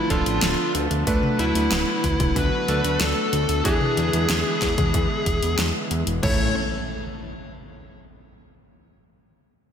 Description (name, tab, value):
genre	synthwave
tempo	93 BPM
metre	4/4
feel	straight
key	unclear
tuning	A4 = 438 Hz
part	fuzz lead guitar	melody	0.0-6.5 s	E4 to C#5	-26 LUFS	left 1 dB	distortion, slapback echo, digital delay
part	lush unison pad	sustained chords	0.0-6.5 s	C#3 to A4	-29 LUFS	equal	chorus, sidechain pumping
part	clear electric grand piano	stabs	0.0-6.5 s	E3 to C#5	-27 LUFS	right 1 dB	slapback echo, digital delay
part	fat analog bass	bass	0.1-6.5 s	D1 to E2	-25 LUFS	equal	none
part	electronic kick drum	drums	0.1-6.4 s	none	-26 LUFS	equal	studio reverb
part	pop drum kit	drums	0.1-6.4 s	crash cymbal, hi-hat, snare drum, toms	-27 LUFS	left 1 dB	studio reverb
part	impact	sound effects	6.2-8.8 s	none	-32 LUFS	equal	none
room	moderate concert hall reverb, RT60 2.2 s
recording	big arena sound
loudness	-19 LUFS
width	side -8 dB against mid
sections	0.0-6.2 A section; 6.2-8.8 B section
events	none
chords	0.0 Dm6; 1.1 Bm7/D; 3.7 E7; 6.2 A